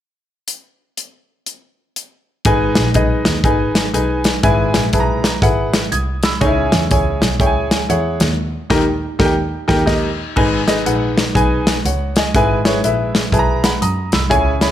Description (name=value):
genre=uptempo gospel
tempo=121 BPM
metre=4/4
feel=swing 63% on 8ths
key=G# minor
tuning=A4 = 441 Hz
part: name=modern studio drum kit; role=drums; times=0.5-14.7 s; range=crash cymbal, hi-hat, kick drum, snare drum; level=-18 LUFS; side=equal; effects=none
part: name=bright grand piano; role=accompaniment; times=2.5-14.7 s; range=G#2 to G#6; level=-17 LUFS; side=left 1 dB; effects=none
part: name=warm double bass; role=bass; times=2.5-14.7 s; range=G#1 to F#2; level=-20 LUFS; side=equal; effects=none
room=light reverb, small room ambience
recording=none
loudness=-14 LUFS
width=side -11 dB against mid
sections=0.5-2.5 A section; 2.5-10.4 B section; 10.4-14.7 C section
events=band accent 8.4-10.4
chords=0.5 N.C.; 2.5 G#m; 4.4 E/G#; 6.4 C#m; 8.4 D#; 10.4 G#m; 12.3 E/G#